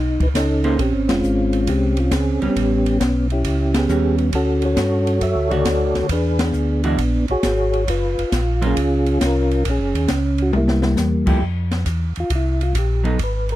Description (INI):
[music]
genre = soul jazz organ trio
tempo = 136 BPM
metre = 4/4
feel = swing 68% on 8ths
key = unclear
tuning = A4 = 440 Hz
[part]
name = percussive tonewheel organ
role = melody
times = 0.0-13.6 s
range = G3 to Fb5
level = -20 LUFS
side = equal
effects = slow rotary speaker, chorus vibrato, slapback echo
[part]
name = mellow tonewheel organ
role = bass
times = 0.0-13.6 s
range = F1 to G2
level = -20 LUFS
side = equal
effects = slow rotary speaker
[part]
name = open jazz drum kit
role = drums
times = 0.2-13.6 s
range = crash cymbal, hi-hat, kick drum, ride cymbal, snare drum, toms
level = -25 LUFS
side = equal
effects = none
[part]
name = vintage hollow-body jazz guitar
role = accompaniment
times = 0.6-13.2 s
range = D3 to C5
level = -23 LUFS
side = right 2 dB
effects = none
[sound]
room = little or no reverb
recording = dry, close 1970s-style studio recording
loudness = -16 LUFS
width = side -14 dB against mid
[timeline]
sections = 0.0-11.4 A section; 11.4-13.6 B section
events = band accent 1.0, 3.7, 6.3; drum fill 10.5-11.0; tonewheel organ solo 11.4-13.6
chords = 0.0 Cb13; 0.8 Bbm9; 2.6 A13; 4.3 Dmaj7; 6.1 E9; 7.9 Gbmaj7; 9.6 Ebm7; 10.5 C7; 11.4 F5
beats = 0.35 | 0.79 1.24 1.68 2.12 | 2.56 3.00 3.45 3.89 | 4.33 4.77 5.21 5.66 | 6.10 6.54 6.99 7.43 | 7.87 8.31 8.76 9.20 | 9.64 10.09 10.53 10.97 | 11.41 11.86 12.30 12.75 | 13.19